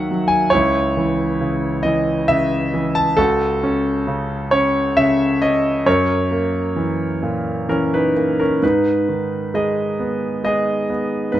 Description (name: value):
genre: classical, lyrical solo piano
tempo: 67 BPM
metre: 3/4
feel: rubato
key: G# minor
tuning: A4 = 437 Hz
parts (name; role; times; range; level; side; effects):
- clear concert grand piano; solo; 0.0-11.4 s; C#2 to A5; -16 LUFS; equal; none
room: light reverb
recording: close, detailed microphones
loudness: -16 LUFS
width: side -12 dB against mid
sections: 0.0-8.6 A section; 8.6-11.4 B section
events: none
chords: 0.0 D#m7; 0.5 C#m; 3.2 A6/C#; 5.9 F#7; 8.6 G#m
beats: | 0.53 1.40 2.29 | 3.18 4.07 4.97 | 5.86 6.76 7.69 | 8.62 9.53 10.44 | 11.33